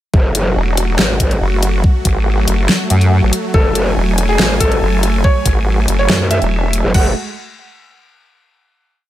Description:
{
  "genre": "heavy wobble dubstep",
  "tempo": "141 BPM",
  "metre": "4/4",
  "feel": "half-time",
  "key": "F# minor",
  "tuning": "A4 = 442 Hz",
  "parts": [
    { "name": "supersaw chords", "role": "sustained chords", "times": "0.1-7.1 s", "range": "F#3 to G#5", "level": "-21 LUFS", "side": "equal", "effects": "sidechain pumping" },
    { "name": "growl bass", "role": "bass", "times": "0.1-7.1 s", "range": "F#1 to F#2", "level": "-16 LUFS", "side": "equal", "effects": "chorus, overdrive" },
    { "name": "electronic kick drum", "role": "drums", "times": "0.1-7.0 s", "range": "none", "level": "-13 LUFS", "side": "equal", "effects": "overdrive, small room ambience" },
    { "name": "dubstep drum kit", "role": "drums", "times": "0.3-7.0 s", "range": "crash cymbal, hi-hat, snare drum", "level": "-17 LUFS", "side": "left 1 dB", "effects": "overdrive, small room ambience" },
    { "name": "vowel-sweep wobble bass", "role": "bass", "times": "0.6-6.8 s", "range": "E1 to F#2", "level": "-14 LUFS", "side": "equal", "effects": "chorus, overdrive" },
    { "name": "felt-muted upright piano", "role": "melody", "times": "3.5-7.1 s", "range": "G#4 to F#5", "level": "-20 LUFS", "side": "equal", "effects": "digital delay" }
  ],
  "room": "digital ambience",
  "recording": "none",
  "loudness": "-12 LUFS",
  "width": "side -13 dB against mid",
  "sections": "0.1-6.9 drop; 6.9-8.6 final chord",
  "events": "drop 0.1-6.9",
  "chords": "0.1 F#madd9"
}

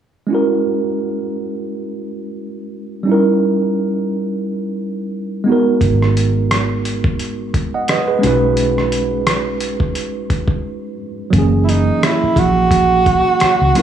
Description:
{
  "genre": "R&B, neo-soul",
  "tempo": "87 BPM",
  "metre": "4/4",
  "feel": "swing 55% on 16ths",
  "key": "unclear",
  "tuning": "A4 = 440 Hz",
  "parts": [
    { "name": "tine electric piano", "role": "accompaniment", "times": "0.3-13.8 s", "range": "E3 to F#5", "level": "-17 LUFS", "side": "right 2 dB", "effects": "overdrive, fast stereo tremolo" },
    { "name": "vintage muted fingered electric bass", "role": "bass", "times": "5.8-13.7 s", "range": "F#1 to C#2", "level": "-18 LUFS", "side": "equal", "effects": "none" },
    { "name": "dusty soul sampler-style drum kit", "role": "drums", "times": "5.8-13.8 s", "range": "hi-hat, kick drum, rim click", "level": "-19 LUFS", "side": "equal", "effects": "overdrive" },
    { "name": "breathy tenor saxophone", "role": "melody", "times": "11.6-13.8 s", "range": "D#4 to F#4", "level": "-14 LUFS", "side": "right 3 dB", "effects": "slapback echo" }
  ],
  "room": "light reverb, digital ambience",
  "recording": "studio ambience",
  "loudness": "-14 LUFS",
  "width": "side -9 dB against mid",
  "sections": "0.3-11.3 A section; 11.3-13.8 B section",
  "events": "break 10.6-11.3",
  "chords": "0.3 F#7; 3.1 D#7b9; 5.5 G#m9; 8.2 B6; 11.3 F#7"
}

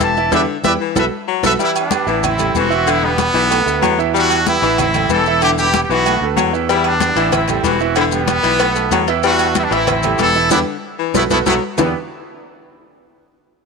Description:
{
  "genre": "latin, salsa",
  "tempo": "188 BPM",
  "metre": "4/4",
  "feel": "straight",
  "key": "E minor",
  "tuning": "A4 = 440 Hz",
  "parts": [
    { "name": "bright trumpet section", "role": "melody", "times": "0.0-11.9 s", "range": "G3 to A5", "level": "-18 LUFS", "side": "equal", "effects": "none" },
    { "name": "warm baritone saxophone", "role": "second line", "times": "0.0-11.9 s", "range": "D3 to G3", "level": "-20 LUFS", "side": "left 12 dB", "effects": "none" },
    { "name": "clear concert grand piano", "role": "accompaniment", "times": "0.0-11.9 s", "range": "E3 to E5", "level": "-20 LUFS", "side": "right 14 dB", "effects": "none" },
    { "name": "sustaining fretless electric bass", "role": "bass", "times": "0.0-11.9 s", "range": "E1 to E2", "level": "-23 LUFS", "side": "equal", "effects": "none" },
    { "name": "congas", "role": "percussion", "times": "0.0-11.9 s", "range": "none", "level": "-24 LUFS", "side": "left 10 dB", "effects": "none" },
    { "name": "cowbell and bongos", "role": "percussion", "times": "0.0-1.5, 6.7-11.9 s", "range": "none", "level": "-24 LUFS", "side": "left 11 dB", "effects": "none" },
    { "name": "maracas", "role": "percussion", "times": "0.0-11.9 s", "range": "none", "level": "-28 LUFS", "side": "left 13 dB", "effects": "none" },
    { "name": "timbales and agogo bells", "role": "percussion", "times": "0.3-11.9 s", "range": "none", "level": "-24 LUFS", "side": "right 14 dB", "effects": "none" }
  ],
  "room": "light reverb",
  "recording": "1960s-style stereo with parts hard left and right",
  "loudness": "-13 LUFS",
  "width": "side -4 dB against mid",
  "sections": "0.0-1.6 A section; 1.6-11.8 A section; 11.8-13.1 B section",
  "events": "band accent 0.3-1.6, 10.5-11.8; drum fill 1.0-1.6, 10.5-11.8",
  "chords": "0.3 Em7; 1.0 B7sus4; 1.6 Em7; 2.2 Am7; 2.9 Em7; 3.5 B7sus4; 4.1 Em7; 4.8 Am7; 5.4 Em7; 6.1 B7sus4; 6.7 Em7; 7.3 Am7; 8.0 Em7; 8.6 B7sus4; 9.2 Em7; 9.9 Am7; 10.5 Em7; 11.1 B7sus4; 11.8 Em7"
}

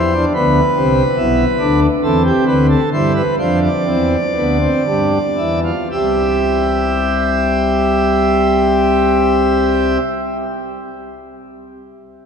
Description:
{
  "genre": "classical, baroque-style 3-part fugue for pipe organ",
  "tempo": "54-74 BPM",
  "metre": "3/4",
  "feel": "straight",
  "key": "C major",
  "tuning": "A4 = 441 Hz",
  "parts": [
    { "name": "pipe organ, principal chorus", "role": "solo", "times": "0.0-10.0 s", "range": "B1 to E5", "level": "-13 LUFS", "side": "equal", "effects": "none" }
  ],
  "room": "wet cathedral reverb, RT60 5.0 s",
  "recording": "minimal, uncompressed stereo recording",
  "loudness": "-13 LUFS",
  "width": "side -6 dB against mid",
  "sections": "0.0-5.9 A section; 5.9-9.2 B section",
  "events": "slowing down 0.0-5.9",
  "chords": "0.4 Cmaj9; 2.0 C/E; 2.9 G7sus4; 4.9 G5; 5.9 C"
}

